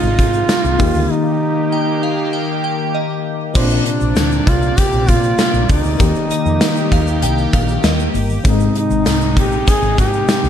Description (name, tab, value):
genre	1980s-style pop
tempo	98 BPM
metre	4/4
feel	straight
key	Eb major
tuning	A4 = 440 Hz
part	warm duduk	melody	0.0-10.5 s	D4 to Ab4	-20 LUFS	right 2 dB	ping-pong delay
part	FM electric piano with auto-pan	accompaniment	0.0-10.5 s	Ab2 to D5	-22 LUFS	left 6 dB	none
part	sweeping resonant pad	sustained chords	0.0-10.5 s	C3 to D5	-23 LUFS	left 2 dB	chorus
part	woody fretless electric bass	bass	0.0-10.5 s	G1 to Bb2	-19 LUFS	equal	none
part	tube shaker	percussion	0.0-10.5 s	none	-38 LUFS	right 12 dB	none
part	gated 80s drum kit	drums	0.2-10.4 s	crash cymbal, hi-hat, kick drum, snare drum, tambourine	-16 LUFS	equal	none
part	glassy synth bell	second line	1.7-8.3 s	Eb5 to G5	-25 LUFS	right 2 dB	chorus, phaser, ping-pong delay
room	light reverb, small room reverb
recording	dark, warm production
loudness	-13 LUFS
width	side -9 dB against mid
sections	0.0-3.6 A section; 3.6-10.5 A section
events	break 1.1-3.6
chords	0.0 Ab; 0.8 Eb; 3.6 Bbadd9; 6.0 Eb; 8.4 Ab